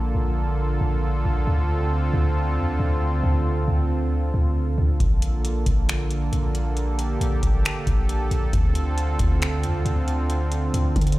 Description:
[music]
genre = hip hop, atmospheric cloud-rap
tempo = 136 BPM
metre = 4/4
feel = half-time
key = D minor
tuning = A4 = 438 Hz
[part]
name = warm analog pad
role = sustained chords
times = 0.0-11.2 s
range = D3 to A4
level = -26 LUFS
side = right 2 dB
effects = chorus, sidechain pumping
[part]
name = warm 808-style bass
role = bass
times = 0.0-11.2 s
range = Bb1 to D3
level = -22 LUFS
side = equal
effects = none
[part]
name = booming analog drum machine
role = drums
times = 5.0-11.2 s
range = finger snaps, hi-hat, kick drum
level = -23 LUFS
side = equal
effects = none
[sound]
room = digital ambience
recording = played on a big sound system in a bare room, large studio reverb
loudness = -20 LUFS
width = side -17 dB against mid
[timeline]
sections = 0.0-11.2 A section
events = none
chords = 0.0 Bbmaj7; 1.5 Dm7; 5.0 Bbmaj7; 8.5 Dm7

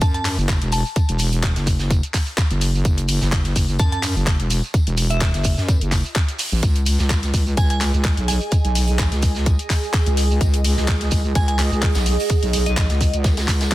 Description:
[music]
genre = bass house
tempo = 127 BPM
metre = 4/4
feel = swing 54% on 16ths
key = unclear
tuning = A4 = 438 Hz
[part]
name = glassy synth bell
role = melody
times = 0.0-13.3 s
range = D#5 to A5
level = -29 LUFS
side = equal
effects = chorus, phaser, tape echo
[part]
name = wobble bass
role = bass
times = 0.0-13.7 s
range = E1 to F#2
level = -20 LUFS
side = equal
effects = chorus, tube saturation, sidechain pumping
[part]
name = electronic kick drum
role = drums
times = 0.0-13.7 s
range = none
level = -19 LUFS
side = equal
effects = none
[part]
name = garage drum kit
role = drums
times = 0.0-13.7 s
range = handclaps, hi-hat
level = -26 LUFS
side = left 2 dB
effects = none
[part]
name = tight funk drum kit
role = drums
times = 0.0-13.7 s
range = hi-hat, snare drum, tambourine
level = -33 LUFS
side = right 1 dB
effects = none
[part]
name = shekere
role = percussion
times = 0.0-13.7 s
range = none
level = -32 LUFS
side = right 5 dB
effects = none
[part]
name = granular cloud pad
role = texture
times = 7.8-13.7 s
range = G#4 to G#5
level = -28 LUFS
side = right 4 dB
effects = built-in reverb, sidechain pumping
[sound]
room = little or no reverb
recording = dense, heavily limited modern master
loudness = -17 LUFS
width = side -16 dB against mid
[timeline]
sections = 0.0-13.7 A section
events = none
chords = 0.0 N.C.; 6.6 C#sus2

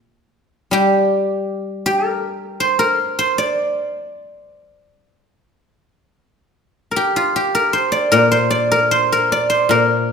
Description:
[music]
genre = chinese traditional, Chinese solo plucked strings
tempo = 68-82 BPM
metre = 4/4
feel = rubato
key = unclear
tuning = A4 = 440 Hz
[part]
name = guzheng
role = solo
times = 0.0-10.1 s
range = Bb2 to D5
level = -15 LUFS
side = equal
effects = none
[sound]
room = moderate recital hall reverb, RT60 1.6 s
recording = minimal, uncompressed stereo recording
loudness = -15 LUFS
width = side -6 dB against mid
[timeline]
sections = 0.0-6.6 A section; 6.6-10.1 B section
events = none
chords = none

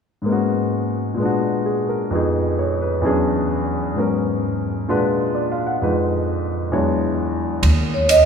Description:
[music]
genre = jazz, small-group swing and bop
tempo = 130 BPM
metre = 4/4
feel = swing 66% on 8ths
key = unclear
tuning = A4 = 440 Hz
[part]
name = warm grand piano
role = accompaniment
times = 0.2-7.6 s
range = E2 to Gb5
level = -19 LUFS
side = left 1 dB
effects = none
[part]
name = upright bass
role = bass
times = 7.6-8.3 s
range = Eb2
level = -17 LUFS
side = right 1 dB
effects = none
[part]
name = open jazz drum kit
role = drums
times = 7.6-8.2 s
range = hi-hat, ride cymbal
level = -23 LUFS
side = right 3 dB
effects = none
[part]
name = vibraphone with soft mallets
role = melody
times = 7.9-8.3 s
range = Db5 to Eb5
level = -12 LUFS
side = right 3 dB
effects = none
[sound]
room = wet cathedral reverb, RT60 5.8 s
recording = recorded in a church or concert hall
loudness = -18 LUFS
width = side -6 dB against mid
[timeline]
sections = 0.3-7.6 A section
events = none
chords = 0.3 Abm11; 1.2 Bb7b9b13; 2.1 Fm7b5; 3.0 E13; 4.0 Abm11; 4.9 Bb7b9b13; 5.8 Fm7b5; 6.7 E13; 7.6 Eb7(no3)

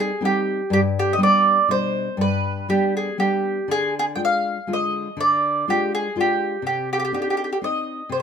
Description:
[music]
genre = italian folk, Italian serenade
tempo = 122 BPM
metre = 3/4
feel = straight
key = C harmonic minor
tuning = A4 = 440 Hz
[part]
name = mandolin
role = melody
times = 0.0-8.2 s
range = G4 to G5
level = -20 LUFS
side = right 1 dB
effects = none
[part]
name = nylon-string guitar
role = accompaniment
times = 0.0-8.2 s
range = G2 to F4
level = -24 LUFS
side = left 1 dB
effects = none
[sound]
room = moderate studio reverb, RT60 0.6 s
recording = minimal, uncompressed stereo recording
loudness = -19 LUFS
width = side -7 dB against mid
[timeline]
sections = 0.0-8.2 A section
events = none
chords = 0.0 Cm; 0.7 G; 3.7 Ddim; 6.6 Cmadd9

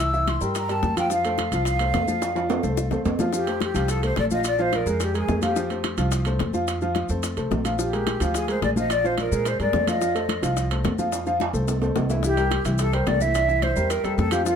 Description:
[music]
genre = Afro-Cuban jazz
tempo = 216 BPM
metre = 4/4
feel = straight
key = F major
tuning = A4 = 440 Hz
[part]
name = breathy mellow jazz flute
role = melody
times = 0.0-14.6 s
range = F4 to E6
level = -25 LUFS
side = equal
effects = tape echo
[part]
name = warm upright piano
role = accompaniment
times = 0.0-14.6 s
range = E3 to F5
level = -26 LUFS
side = equal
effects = none
[part]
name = upright bass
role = bass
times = 0.0-14.6 s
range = Bb1 to Bb2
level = -27 LUFS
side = equal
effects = none
[part]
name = bongos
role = percussion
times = 0.0-14.6 s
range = none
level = -33 LUFS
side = left 8 dB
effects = none
[part]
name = congas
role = percussion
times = 0.0-14.6 s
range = none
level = -31 LUFS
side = left 2 dB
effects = none
[part]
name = maracas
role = percussion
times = 0.0-14.6 s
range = none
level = -38 LUFS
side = left 6 dB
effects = none
[part]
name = timbales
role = percussion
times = 0.0-14.5 s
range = none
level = -31 LUFS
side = right 4 dB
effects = none
[sound]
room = moderate small room reverb, RT60 0.6 s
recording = none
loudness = -21 LUFS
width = side -7 dB against mid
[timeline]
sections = 0.0-3.3 A section; 3.3-14.6 A section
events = drum fill 2.2-3.3, 11.1-12.2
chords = 0.0 C6; 1.1 F; 3.3 Fadd9; 4.4 Bb5; 5.6 F; 7.8 Bb6; 10.0 F; 12.2 C7

